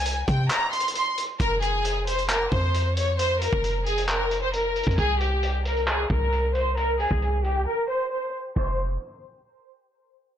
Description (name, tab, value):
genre	hip hop, trap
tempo	134 BPM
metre	4/4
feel	half-time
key	F minor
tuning	A4 = 441 Hz
part	warm symphonic violin section	melody	0.0-8.8 s	G4 to C6	-25 LUFS	left 1 dB	none
part	warm 808-style bass	bass	0.0-9.0 s	F1 to C3	-26 LUFS	equal	none
part	vintage drum kit	drums	0.1-8.7 s	crash cymbal, handclaps, hi-hat, kick drum	-29 LUFS	equal	none
room	little or no reverb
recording	blown-out, overdriven recording, overdrive, low-pass filter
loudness	-22 LUFS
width	side -10 dB against mid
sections	0.0-1.4 A section; 1.4-8.6 B section; 8.6-10.4 C section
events	kick muted 0.5-1.4; filter sweep 1.4-8.6; break 7.7-8.6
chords	0.0 C5; 1.4 F5; 5.0 C5; 8.6 F5